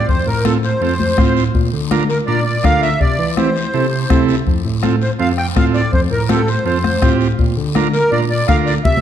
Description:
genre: latin, cumbia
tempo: 164 BPM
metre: 4/4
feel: straight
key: F major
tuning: A4 = 441 Hz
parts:
  - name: accordion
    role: melody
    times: 0.0-9.0 s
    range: A4 to G5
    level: -19 LUFS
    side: equal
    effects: light tremolo tuning
  - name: barky tine electric piano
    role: bass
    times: 0.1-9.0 s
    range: F2 to E3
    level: -19 LUFS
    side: equal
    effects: medium stereo tremolo
  - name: bombo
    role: percussion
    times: 0.1-9.0 s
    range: none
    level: -18 LUFS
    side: left 2 dB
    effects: none
  - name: guiro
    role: percussion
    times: 0.1-9.0 s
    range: none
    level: -31 LUFS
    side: left 8 dB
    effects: none
  - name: combo organ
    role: accompaniment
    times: 0.4-8.7 s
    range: C4 to C5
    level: -20 LUFS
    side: right 6 dB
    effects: none
  - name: congas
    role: percussion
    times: 0.5-9.0 s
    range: none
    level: -23 LUFS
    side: left 4 dB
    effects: none
room: moderate recital hall reverb, RT60 1.6 s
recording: dark, warm production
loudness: -13 LUFS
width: side -10 dB against mid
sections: 0.0-9.0 A section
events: drum fill 8.8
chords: 0.0 F; 1.5 Bb; 3.0 C6; 4.5 F; 7.4 Bb

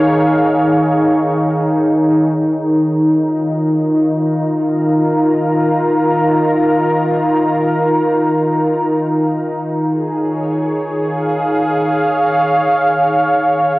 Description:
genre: ambient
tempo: free time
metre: none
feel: none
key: unclear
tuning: A4 = 443 Hz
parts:
  - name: warm analog pad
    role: solo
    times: 0.0-13.8 s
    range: Eb3 to Bb5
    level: -12 LUFS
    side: equal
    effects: chorus, analog delay
room: wet spring reverb, RT60 1.3 s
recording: home recording on cassette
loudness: -12 LUFS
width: side -19 dB against mid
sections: 0.0-2.4 A section; 2.4-13.8 A section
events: none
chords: 0.0 Dbadd9/Eb

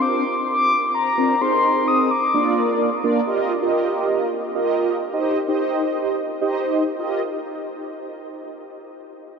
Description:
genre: pop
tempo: 129 BPM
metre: 4/4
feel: straight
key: Eb major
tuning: A4 = 441 Hz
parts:
  - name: mellow horn-like synth lead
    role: melody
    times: 0.0-2.8 s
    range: Bb5 to Eb6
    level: -21 LUFS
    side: left 2 dB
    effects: chorus, ping-pong delay
  - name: mellow synth brass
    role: accompaniment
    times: 0.0-7.2 s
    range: Bb3 to Eb5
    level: -21 LUFS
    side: right 1 dB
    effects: chorus
room: wet huge ambient reverb, RT60 8.4 s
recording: dreamy mix soaked in reverb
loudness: -18 LUFS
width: side -6 dB against mid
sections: 0.0-3.3 A section; 3.3-7.0 B section; 7.0-8.9 C section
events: none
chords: 0.0 Bbadd9; 1.4 Abadd9; 2.3 Bb; 3.3 Ebadd9; 5.1 Cm; 7.0 Ebadd9

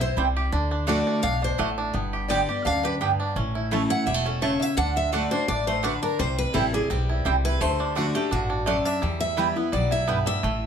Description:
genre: bluegrass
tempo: 170 BPM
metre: 4/4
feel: swing 54% on 8ths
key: unclear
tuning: A4 = 440 Hz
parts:
  - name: picked steel-string acoustic guitar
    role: melody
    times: 0.0-10.7 s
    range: F#4 to F#5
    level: -28 LUFS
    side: equal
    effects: none
  - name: lap resonator guitar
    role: second line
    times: 0.0-10.7 s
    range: F#4 to F#5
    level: -32 LUFS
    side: left 6 dB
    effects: none
  - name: picked steel-string acoustic guitar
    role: accompaniment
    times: 0.0-10.7 s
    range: E2 to G4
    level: -29 LUFS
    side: left 1 dB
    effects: none
  - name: bluegrass banjo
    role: arpeggios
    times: 0.0-10.7 s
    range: G3 to G4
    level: -29 LUFS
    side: right 3 dB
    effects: none
  - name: upright bass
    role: bass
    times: 0.0-10.7 s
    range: E1 to E2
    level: -28 LUFS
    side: equal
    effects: none
  - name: mandolin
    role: stabs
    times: 0.2-10.2 s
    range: A3 to A5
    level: -27 LUFS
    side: right 8 dB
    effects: none
room: light reverb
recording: none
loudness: -22 LUFS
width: side -7 dB against mid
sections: 0.0-3.4 A section; 3.4-10.7 B section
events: none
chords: 0.0 C; 0.5 D; 1.9 G; 3.4 A; 4.8 D; 6.2 C; 7.6 D; 9.0 Em

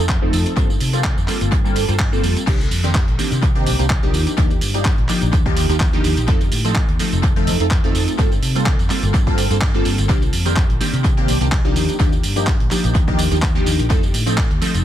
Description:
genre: filtered disco house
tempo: 126 BPM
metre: 4/4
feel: swing 55% on 16ths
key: unclear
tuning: A4 = 440 Hz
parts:
  - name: funky polysynth comp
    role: accompaniment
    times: 0.0-14.8 s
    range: Eb3 to A4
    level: -21 LUFS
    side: equal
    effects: chorus, phaser, vintage 12-bit sampler grit, sidechain pumping, low-pass filter, tape echo
  - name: fingered electric bass with an envelope filter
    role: bass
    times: 0.0-14.8 s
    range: F1 to C3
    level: -21 LUFS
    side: equal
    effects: sidechain pumping, low-pass filter
  - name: dusty soul sampler-style drum kit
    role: drums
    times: 0.1-14.8 s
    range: crash cymbal, handclaps, hi-hat, tambourine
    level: -24 LUFS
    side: right 1 dB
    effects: sidechain pumping on hats, sidechain pumping on perc, sidechain pumping on cymbals, tape echo
  - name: electronic kick drum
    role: drums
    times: 0.1-14.5 s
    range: none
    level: -18 LUFS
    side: equal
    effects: overdrive
room: digital ambience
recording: echo-heavy mix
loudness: -15 LUFS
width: side -11 dB against mid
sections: 0.0-2.5 A section; 2.5-14.8 B section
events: filter sweep 0.0-2.5; drop 2.5-14.8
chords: 0.0 F7; 0.6 Gm11; 2.5 Cm9; 4.1 Ebmaj9; 6.3 F7; 8.2 Gm11; 10.1 Cm9; 11.8 Ebmaj9; 13.9 F7

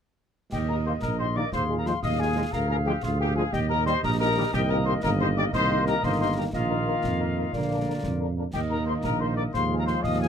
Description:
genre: military-style march for wind band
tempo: 120 BPM (dotted quarters)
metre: 6/8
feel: straight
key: Eb major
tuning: A4 = 440 Hz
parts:
  - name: dark trumpet section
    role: melody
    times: 0.5-10.3 s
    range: F4 to Eb5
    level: -31 LUFS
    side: left 3 dB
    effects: none
  - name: mellow woodwind section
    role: second line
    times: 0.5-10.3 s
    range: G4 to F5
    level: -32 LUFS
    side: left 1 dB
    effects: none
  - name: wooden piccolo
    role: second line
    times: 0.5-10.3 s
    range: F5 to Eb6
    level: -32 LUFS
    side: left 4 dB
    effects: none
  - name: mellow tuba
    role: bass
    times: 0.5-10.3 s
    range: G1 to F2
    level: -28 LUFS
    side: right 3 dB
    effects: none
  - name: concert snare drum, clash cymbals and concert bass drum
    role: drums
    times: 0.5-10.3 s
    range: none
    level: -35 LUFS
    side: equal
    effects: none
  - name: warm French horn section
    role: accompaniment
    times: 0.7-10.3 s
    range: F3 to Bb4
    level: -33 LUFS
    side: left 2 dB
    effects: none
  - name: bright trombone section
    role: sustained chords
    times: 0.9-10.3 s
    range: D3 to Bb3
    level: -31 LUFS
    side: equal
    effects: none
room: light reverb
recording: close, detailed microphones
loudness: -23 LUFS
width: side -8 dB against mid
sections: 0.5-10.3 A section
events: none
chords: 0.5 Eb; 1.5 Fm7/Eb; 2.5 Bb7/D; 3.5 Eb; 4.5 Cm7; 6.5 Bbsus4; 7.5 Bb; 8.5 Eb5; 9.5 Fm7/Eb

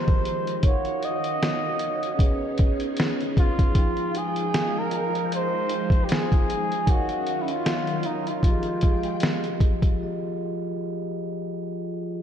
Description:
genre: lo-fi hip hop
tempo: 77 BPM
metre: 4/4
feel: swing 56% on 16ths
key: F minor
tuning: A4 = 439 Hz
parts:
  - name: breathy flugelhorn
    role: melody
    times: 0.0-9.6 s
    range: Eb4 to Eb5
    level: -28 LUFS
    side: right 1 dB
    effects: low-pass filter, tape echo
  - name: vibraphone with soft mallets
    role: accompaniment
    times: 0.0-12.2 s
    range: F3 to G5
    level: -30 LUFS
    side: equal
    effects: cassette tape, low-pass filter
  - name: phased string machine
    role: sustained chords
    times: 0.0-10.0 s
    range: Eb3 to G5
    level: -33 LUFS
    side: equal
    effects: ensemble chorus, phaser, low-pass filter
  - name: lo-fi sampler-style drum kit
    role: drums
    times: 0.1-10.0 s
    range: hi-hat, kick drum, snare drum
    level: -23 LUFS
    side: equal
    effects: none
room: moderate plate reverb, RT60 3.3 s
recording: dreamy mix soaked in reverb, cassette tape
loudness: -22 LUFS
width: side -9 dB against mid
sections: 0.0-10.0 A section; 10.0-12.2 B section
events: none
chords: 0.0 Fm9; 0.6 Ebm9; 2.2 Dbsus2; 3.7 Fm9; 6.9 Ebm9; 8.4 Fm9

